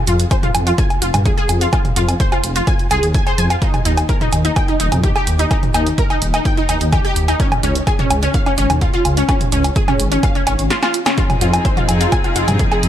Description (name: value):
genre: melodic techno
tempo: 127 BPM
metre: 4/4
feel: straight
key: F minor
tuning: A4 = 440 Hz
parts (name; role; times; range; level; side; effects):
- wide unison pluck; arpeggios; 0.1-12.8 s; Db4 to Ab6; -20 LUFS; equal; ensemble chorus, sidechain pumping, ping-pong delay
- dark detuned saw bass; bass; 0.1-12.9 s; Eb1 to G2; -18 LUFS; equal; sidechain pumping
- punchy analog drum machine; drums; 0.1-12.9 s; hi-hat, snare drum, toms, woodblock; -20 LUFS; right 1 dB; none
- electronic kick drum; drums; 0.3-12.7 s; none; -18 LUFS; equal; none
- clear studio string section; sustained chords; 11.2-12.9 s; F3 to Ab4; -22 LUFS; left 2 dB; sidechain pumping
room: little or no reverb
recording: none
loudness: -13 LUFS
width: side -11 dB against mid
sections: 0.0-12.9 A section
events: drum fill 10.7-11.2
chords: 0.0 Fm; 3.6 Eb5; 7.4 Db5; 11.2 Fm7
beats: 0.31 0.78 1.25 | 1.73 2.20 2.67 3.15 | 3.62 4.09 4.56 5.03 | 5.51 5.98 6.45 6.92 | 7.40 7.87 8.34 8.81 | 9.29 9.76 10.23 10.70 | 11.18 11.65 12.12 12.59